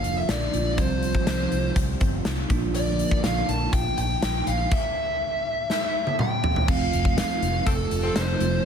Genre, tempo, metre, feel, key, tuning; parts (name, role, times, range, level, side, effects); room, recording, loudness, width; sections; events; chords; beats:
1980s-style pop; 122 BPM; 4/4; straight; A4 = 440 Hz
fuzz lead guitar; melody; 0.0-8.6 s; A4 to A5; -27 LUFS; left 1 dB; distortion
bell-like tine electric piano; accompaniment; 0.0-8.7 s; F3 to F4; -29 LUFS; right 8 dB; analog chorus
chorused pulse-width pad; sustained chords; 0.0-8.7 s; C3 to F4; -35 LUFS; right 1 dB
vintage muted fingered electric bass; bass; 0.0-8.6 s; F1 to C2; -28 LUFS; left 1 dB; tube saturation
huge arena drum kit; drums; 0.0-8.5 s; crash cymbal, hi-hat, kick drum, snare drum, tambourine, toms; -26 LUFS; left 1 dB
warm horn section; stabs; 7.7-8.4 s; F3 to A4; -33 LUFS; left 4 dB
light reverb, small room ambience; -22 LUFS; side -7 dB against mid
0.0-6.7 A section; 6.7-8.7 B section
drum fill 5.7-6.7
0.0 Bb; 0.8 Fsus2/C; 2.5 Bb; 4.7 N.C.; 6.7 F
0.29 | 0.78 1.27 1.76 2.26 | 2.75 3.24 3.73 4.22 | 4.71 5.21 5.70 6.19 | 6.68 7.17 7.67 8.16 | 8.65